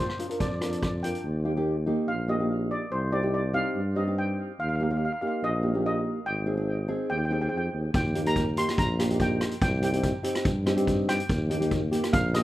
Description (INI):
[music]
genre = calypso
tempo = 143 BPM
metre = 4/4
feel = straight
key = Eb major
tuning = A4 = 440 Hz
[part]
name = steel pan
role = melody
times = 0.0-12.4 s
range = C5 to C6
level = -32 LUFS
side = equal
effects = analog delay
[part]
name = nylon-string guitar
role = accompaniment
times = 0.0-12.4 s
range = Bb3 to Bb4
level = -30 LUFS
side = equal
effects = none
[part]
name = mellow tuba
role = bass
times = 0.0-12.4 s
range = Ab1 to G2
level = -28 LUFS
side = equal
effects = none
[part]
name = street-band drum kit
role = drums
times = 0.1-1.2, 7.9-12.4 s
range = hi-hat, kick drum, rim click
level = -29 LUFS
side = equal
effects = none
[sound]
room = small room ambience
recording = rough home demo mix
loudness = -24 LUFS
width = side -15 dB against mid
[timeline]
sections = 0.0-1.2 A section; 1.2-12.4 B section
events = none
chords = 0.0 Bb; 1.2 Eb; 2.9 Cm; 4.6 Eb; 6.3 Abmaj7; 7.9 Eb; 9.6 Cm; 11.3 Eb